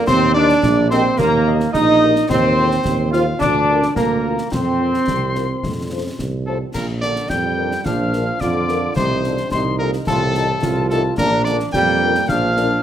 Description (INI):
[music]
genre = military-style march for wind band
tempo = 108 BPM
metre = 2/4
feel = straight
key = Bb major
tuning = A4 = 439 Hz
[part]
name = warm cornet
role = melody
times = 0.0-12.8 s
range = A4 to G5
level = -25 LUFS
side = equal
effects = none
[part]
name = clear euphonium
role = second line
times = 0.0-12.8 s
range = A2 to F4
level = -25 LUFS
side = right 3 dB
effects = none
[part]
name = mellow piccolo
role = second line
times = 0.0-12.8 s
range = A5 to G6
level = -23 LUFS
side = left 4 dB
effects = none
[part]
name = mellow trombone section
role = sustained chords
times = 0.0-12.8 s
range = Bb3 to F4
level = -20 LUFS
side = right 2 dB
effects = none
[part]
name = mellow tuba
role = bass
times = 0.1-12.8 s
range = Bb1 to F2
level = -21 LUFS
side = right 2 dB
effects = none
[part]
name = concert snare drum, clash cymbals and concert bass drum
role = drums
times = 0.1-12.7 s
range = none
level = -26 LUFS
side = left 1 dB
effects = none
[part]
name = mellow French horn section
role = accompaniment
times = 0.4-12.7 s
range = D4 to Eb5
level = -28 LUFS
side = left 6 dB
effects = none
[sound]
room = moderate large studio reverb, RT60 1.2 s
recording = none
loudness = -15 LUFS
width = side -10 dB against mid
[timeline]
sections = 0.0-6.7 A section; 6.7-12.8 B section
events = none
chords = 0.1 Eb; 2.3 F7/Eb; 3.4 Bb/D; 4.5 Fsus4; 5.6 F; 6.7 Bb; 9.0 F7/C; 11.2 Bb